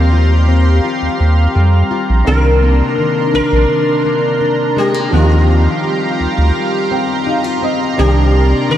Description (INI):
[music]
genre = contemporary R&B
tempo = 84 BPM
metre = 4/4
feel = straight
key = C minor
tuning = A4 = 440 Hz
[part]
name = sitar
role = melody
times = 0.0-8.8 s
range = F4 to C5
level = -19 LUFS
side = equal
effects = diffuse ambient delay
[part]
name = warm baby grand piano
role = accompaniment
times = 0.0-8.8 s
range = Eb3 to G5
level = -22 LUFS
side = right 2 dB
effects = analog chorus
[part]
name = chorused pulse-width pad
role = sustained chords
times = 0.0-8.8 s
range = D4 to C6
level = -19 LUFS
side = right 2 dB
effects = none
[part]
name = fingerpicked plugged-in steel-string acoustic guitar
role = arpeggios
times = 0.0-8.8 s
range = C3 to F4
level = -18 LUFS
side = left 5 dB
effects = diffuse ambient delay
[part]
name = saturated sub bass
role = bass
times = 0.0-8.5 s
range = Bb1 to F2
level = -11 LUFS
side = equal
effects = none
[sound]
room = moderate cathedral reverb, RT60 6.2 s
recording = dreamy mix soaked in reverb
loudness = -11 LUFS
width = side -11 dB against mid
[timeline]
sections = 0.0-2.3 A section; 2.3-8.8 B section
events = grand piano fill 6.6-8.0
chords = 0.0 Eb69; 2.3 Cm9; 5.1 Eb69; 8.0 Cm9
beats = 0.12 0.84 1.55 | 2.27 2.98 3.70 4.41 | 5.12 5.84 6.55 7.27 | 7.98 8.70